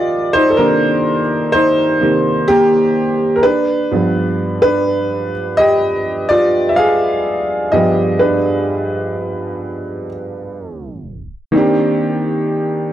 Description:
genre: R&B.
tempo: 63 BPM.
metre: 4/4.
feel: straight.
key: unclear.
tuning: A4 = 444 Hz.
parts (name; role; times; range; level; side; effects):
warm grand piano; solo; 0.0-12.9 s; G2 to F5; -13 LUFS; equal; none.
room: light reverb, studio reverb.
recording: dry, gritty hardware recording, tape stop.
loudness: -12 LUFS.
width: side -12 dB against mid.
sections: 0.0-11.5 A section; 11.5-12.9 B section.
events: grand piano solo 0.0-11.5; tape stop 10.6-11.5.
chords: 0.0 Cm9; 3.4 G7b9; 11.5 Cm9.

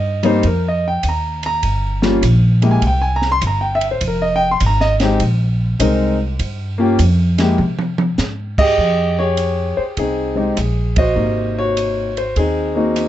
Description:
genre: jazz piano trio.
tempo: 101 BPM.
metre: 4/4.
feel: swing 67% on 8ths.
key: F minor.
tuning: A4 = 438 Hz.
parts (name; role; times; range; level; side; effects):
warm concert grand piano; melody; 0.0-13.1 s; C3 to C6; -17 LUFS; left 1 dB; plate reverb.
upright bass; bass; 0.0-13.1 s; F1 to C3; -18 LUFS; equal; none.
compact cocktail drum kit; drums; 0.2-13.1 s; crash cymbal, hi-hat, kick drum, ride cymbal, rim click, snare drum, toms; -24 LUFS; right 2 dB; none.
room: light reverb.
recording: nothing above 8.0 kHz.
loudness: -14 LUFS.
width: side -12 dB against mid.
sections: 0.0-8.8 A section; 8.8-13.1 B section.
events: grand piano solo 0.0-8.8; drum fill 7.6-8.2; band accent 10.9.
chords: 0.0 Abmaj9 (rootless); 1.6 Gm; 2.8 C5; 4.0 Fm7; 6.4 Gm7; 7.6 C5; 8.8 Fm9; 11.2 Ab7.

